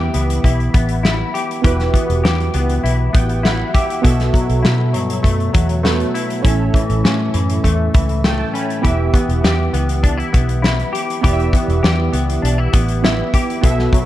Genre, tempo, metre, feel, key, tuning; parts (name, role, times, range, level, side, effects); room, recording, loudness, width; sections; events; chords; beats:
indie pop, bedroom pop; 100 BPM; 4/4; straight; E dorian; A4 = 438 Hz
semi-hollow electric guitar; accompaniment; 0.0-14.1 s; A2 to G4; -21 LUFS; left 4 dB; ensemble chorus, warbly pitch drift
warm analog keys; accompaniment; 0.0-14.1 s; B3 to B5; -22 LUFS; right 6 dB; chorus
vintage muted fingered electric bass; bass; 0.0-13.9 s; E1 to B2; -18 LUFS; equal
loose indie drum kit; drums; 0.1-14.1 s; hi-hat, kick drum, snare drum; -17 LUFS; equal
light reverb, small room ambience; dark, warm production; -14 LUFS; side -14 dB against mid
0.0-14.1 A section
synth keys fill 2.8-4.0, 7.6-8.8
0.0 Em; 4.0 B7sus4; 6.4 A; 8.8 Em
0.45 1.05 | 1.65 2.25 2.85 3.45 | 4.05 4.65 5.25 5.84 | 6.45 7.04 7.64 8.24 | 8.84 9.44 10.04 10.64 | 11.24 11.84 12.44 13.04 | 13.64